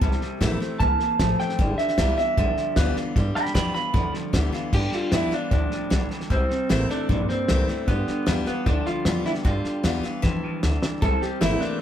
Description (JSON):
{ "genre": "rockabilly", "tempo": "153 BPM", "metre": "4/4", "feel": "straight", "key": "G mixolydian", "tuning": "A4 = 440 Hz", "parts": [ { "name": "electric guitar through a small old amp", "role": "melody", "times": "0.0-11.8 s", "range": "B3 to B5", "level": "-26 LUFS", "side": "right 1 dB", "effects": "none" }, { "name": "picked steel-string acoustic guitar", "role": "accompaniment", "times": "0.0-11.8 s", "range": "G2 to F4", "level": "-30 LUFS", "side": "left 4 dB", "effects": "none" }, { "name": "electric guitar through a small old amp", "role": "riff", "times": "0.0-11.8 s", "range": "G2 to Bb3", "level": "-31 LUFS", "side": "right 2 dB", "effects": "spring reverb" }, { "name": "upright bass", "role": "bass", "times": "0.0-11.6 s", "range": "G1 to G2", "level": "-26 LUFS", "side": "equal", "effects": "none" }, { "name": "cloth-damped thuddy drum kit", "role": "drums", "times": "0.0-11.7 s", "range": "crash cymbal, hi-hat, kick drum, snare drum", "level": "-26 LUFS", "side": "equal", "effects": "none" } ], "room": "moderate small room reverb, RT60 0.5 s", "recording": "band playing live in one room", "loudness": "-21 LUFS", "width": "side -10 dB against mid", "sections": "0.0-4.7 A section; 4.7-11.8 B section", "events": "clean electric guitar solo 0.0-4.7; drum fill 10.2-11.0", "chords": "0.0 C7; 1.6 G7; 6.3 C7; 7.9 G7; 11.0 C7" }